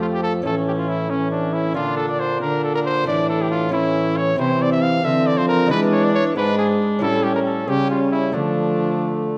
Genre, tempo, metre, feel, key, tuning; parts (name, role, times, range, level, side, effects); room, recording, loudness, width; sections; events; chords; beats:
classical, renaissance-style consort dance; 91 BPM (dotted quarters); 6/8; straight; A4 = 438 Hz
warm cornet; melody; 0.0-9.4 s; C#4 to F5; -25 LUFS; equal
rich viola; second line; 0.0-9.4 s; A3 to D4; -26 LUFS; equal
lute; accompaniment; 0.0-9.4 s; F2 to E4; -31 LUFS; equal
warm trombone; accompaniment; 0.0-9.4 s; D3 to G#3; -26 LUFS; equal
mellow bassoon; bass; 0.0-9.4 s; F2 to E3; -28 LUFS; equal
wet recital hall reverb, RT60 1.3 s; dark, warm production; -20 LUFS; mono
0.0-9.4 A section
0.4 A; 1.8 Bb; 3.1 Asus4; 3.7 A; 4.4 C; 5.7 E7; 7.0 A7; 8.3 Dm
| 0.45 1.11 | 1.76 2.42 | 3.07 3.73 | 4.38 5.04 | 5.70 6.36 | 7.01 7.68 | 8.34 9.01